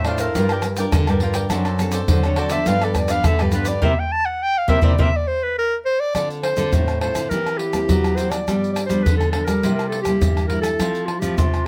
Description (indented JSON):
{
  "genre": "samba and choro",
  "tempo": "103 BPM",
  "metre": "4/4",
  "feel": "straight",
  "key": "D minor from 6.2 s",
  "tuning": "A4 = 440 Hz",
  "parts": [
    { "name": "clear clarinet", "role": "melody", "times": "0.0-11.7 s", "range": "F4 to A5", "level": "-25 LUFS", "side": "equal", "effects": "none" },
    { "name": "cavaquinho", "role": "accompaniment", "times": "0.0-5.1 s", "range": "D4 to G5", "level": "-30 LUFS", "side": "equal", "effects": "none" },
    { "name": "nylon-string guitar", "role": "accompaniment", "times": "0.0-11.7 s", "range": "G2 to C5", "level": "-29 LUFS", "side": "equal", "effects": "none" },
    { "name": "nylon-string guitar", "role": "bass", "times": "0.0-11.7 s", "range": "F#2 to G3", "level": "-26 LUFS", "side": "equal", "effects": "none" },
    { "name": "pandeiro, tamborim, tube shaker and surdo", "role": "percussion", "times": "0.0-11.7 s", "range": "none", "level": "-23 LUFS", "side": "equal", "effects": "none" }
  ],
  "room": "light reverb",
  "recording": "close, detailed microphones",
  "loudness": "-20 LUFS",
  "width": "mono",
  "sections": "0.0-6.2 A section; 6.2-11.7 B section",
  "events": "clarinet solo 0.0-6.2; band accent 3.8-6.2",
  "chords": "0.4 Gm7; 1.5 D7/F#; 2.7 G7; 3.8 C7; 6.2 Dm7; 7.3 C7/E; 8.5 G7; 9.6 C7; 10.8 Fmaj7",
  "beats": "0.35 0.93 | 1.51 2.09 2.67 3.25 | 3.83 4.41 4.99 5.57 | 6.15 6.73 7.31 7.89 | 8.48 9.06 9.64 10.22 | 10.80 11.38"
}